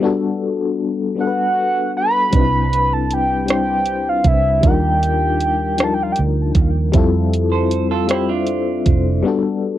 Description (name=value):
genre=slow six-eight R&B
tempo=52 BPM (dotted quarters)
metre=6/8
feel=straight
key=C major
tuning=A4 = 438 Hz
part: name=FM electric piano with tremolo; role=accompaniment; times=0.0-9.8 s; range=F3 to E5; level=-20 LUFS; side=left 5 dB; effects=cassette tape
part: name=soft octave-layered synth lead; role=melody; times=1.2-6.2 s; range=E5 to B5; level=-18 LUFS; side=right 1 dB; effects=chorus, cassette tape
part: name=vintage muted fingered electric bass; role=bass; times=2.3-9.2 s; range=F1 to F2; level=-20 LUFS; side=right 2 dB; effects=none
part: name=smooth R&B drum kit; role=drums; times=2.3-9.0 s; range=hi-hat, kick drum, rim click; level=-16 LUFS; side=right 2 dB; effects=cassette tape
part: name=clean electric guitar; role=second line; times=7.5-9.2 s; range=D4 to C5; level=-22 LUFS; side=right 11 dB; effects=cassette tape
room=light reverb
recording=home recording on cassette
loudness=-15 LUFS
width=side -12 dB against mid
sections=0.0-9.8 A section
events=break 9.2-9.8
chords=0.0 Gmaj9; 2.3 Cmaj9; 4.6 Ebmaj9; 6.9 Fmaj9; 9.2 Gmaj9